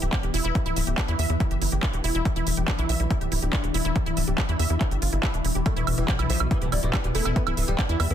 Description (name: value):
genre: psychedelic trance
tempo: 141 BPM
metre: 4/4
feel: straight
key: E minor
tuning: A4 = 440 Hz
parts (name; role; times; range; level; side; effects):
- evolving wavetable pad; sustained chords; 0.0-8.1 s; E3 to D4; -32 LUFS; left 4 dB; chorus, built-in reverb, phaser, sidechain pumping
- wide unison pluck; riff; 0.0-8.1 s; D4 to E5; -31 LUFS; right 2 dB; auto-pan, sidechain pumping, ping-pong delay
- tight sequencer bass; bass; 0.0-8.1 s; D1 to E2; -25 LUFS; equal; none
- techno drum kit; drums; 0.0-8.1 s; handclaps, hi-hat, woodblock; -30 LUFS; right 3 dB; none
- electronic kick drum; drums; 0.1-7.9 s; none; -25 LUFS; equal; none
- oud; melody; 5.7-8.1 s; B2 to B3; -31 LUFS; left 2 dB; phaser, sidechain pumping, ping-pong delay
room: digital ambience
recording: dense, heavily limited modern master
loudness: -22 LUFS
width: side -10 dB against mid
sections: 0.0-8.1 A section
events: none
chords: 0.0 E5